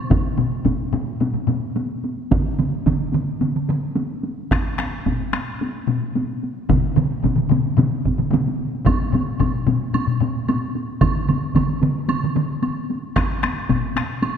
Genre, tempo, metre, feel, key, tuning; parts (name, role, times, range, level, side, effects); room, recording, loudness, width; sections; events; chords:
japanese traditional, taiko drum ensemble; 110 BPM; 4/4; straight
solo taiko drums; percussion; 0.1-13.8 s; -23 LUFS; right 1 dB
taiko ensemble; percussion; 0.1-14.3 s; -24 LUFS; equal
taiko ensemble; percussion; 0.1-14.1 s; -23 LUFS; left 5 dB
taiko ensemble; percussion; 2.3-12.5 s; -21 LUFS; right 4 dB
woodblock; percussion; 8.9-14.3 s; -32 LUFS; right 5 dB
wet concert hall reverb, RT60 2.3 s; -19 LUFS; side -7 dB against mid
0.1-14.4 A section
speeding up 0.0-14.4